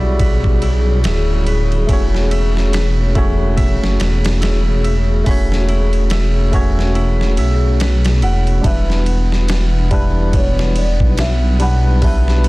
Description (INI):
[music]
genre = trip hop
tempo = 71 BPM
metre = 4/4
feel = swing 58% on 16ths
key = E dorian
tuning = A4 = 442 Hz
[part]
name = barky tine electric piano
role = accompaniment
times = 0.0-12.5 s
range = G3 to D5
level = -22 LUFS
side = equal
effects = overdrive, tremolo, tape echo
[part]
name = rich chamber string section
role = sustained chords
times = 0.0-12.5 s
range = C#3 to B3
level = -25 LUFS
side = left 3 dB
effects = none
[part]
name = concert harp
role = arpeggios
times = 0.0-10.8 s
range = E4 to E5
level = -30 LUFS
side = right 3 dB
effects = vintage 12-bit sampler grit, tape echo
[part]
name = dark detuned saw bass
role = bass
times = 0.0-12.5 s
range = D1 to B1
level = -15 LUFS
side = equal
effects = none
[part]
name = dusty soul sampler-style drum kit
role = drums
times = 0.2-12.5 s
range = hi-hat, kick drum, ride cymbal, snare drum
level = -19 LUFS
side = equal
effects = none
[part]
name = felt-muted upright piano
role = melody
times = 8.2-12.5 s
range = C#5 to F#5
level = -25 LUFS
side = right 1 dB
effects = dub echo
[sound]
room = small room ambience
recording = dense, heavily limited modern master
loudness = -13 LUFS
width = side -21 dB against mid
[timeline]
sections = 0.0-8.6 A section; 8.6-12.5 B section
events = none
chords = 0.0 Em9; 1.9 F#m/E; 8.6 Em7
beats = 0.19 1.04 | 1.88 2.73 3.57 4.42 | 5.26 6.11 6.96 7.80 | 8.64 9.49 10.34 11.18 | 12.03